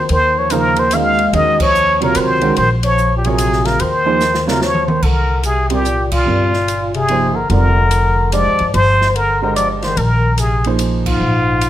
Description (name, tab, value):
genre	modal jazz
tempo	146 BPM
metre	3/4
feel	swing 65% on 8ths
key	Eb dorian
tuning	A4 = 440 Hz
part	trumpet with plunger mute	melody	0.0-11.7 s	F4 to F5	-16 LUFS	equal	none
part	warm bass clarinet	second line	0.0-11.7 s	Ab2 to Ab3	-22 LUFS	left 6 dB	none
part	upright bass	bass	0.0-11.7 s	F1 to G2	-18 LUFS	equal	none
part	open jazz drum kit	drums	0.1-11.7 s	crash cymbal, hi-hat, kick drum, ride cymbal, snare drum, toms	-24 LUFS	equal	none
part	warm baby grand piano	accompaniment	0.5-11.2 s	C3 to Eb5	-20 LUFS	right 5 dB	none
room	moderate large studio reverb, RT60 1.2 s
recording	none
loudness	-12 LUFS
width	side -12 dB against mid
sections	0.0-5.0 A section; 5.0-11.7 B section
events	band accent 1.5, 6.1, 11.0; drum fill 4.2-5.0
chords	0.0 Eb13sus4; 5.0 Fm9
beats	| 0.10 0.52 0.93 | 1.34 1.75 2.16 | 2.57 2.98 3.40 | 3.81 4.22 4.63 | 5.04 5.45 5.86 | 6.27 6.68 7.10 | 7.51 7.92 8.33 | 8.74 9.15 9.56 | 9.97 10.39 10.80 | 11.21 11.62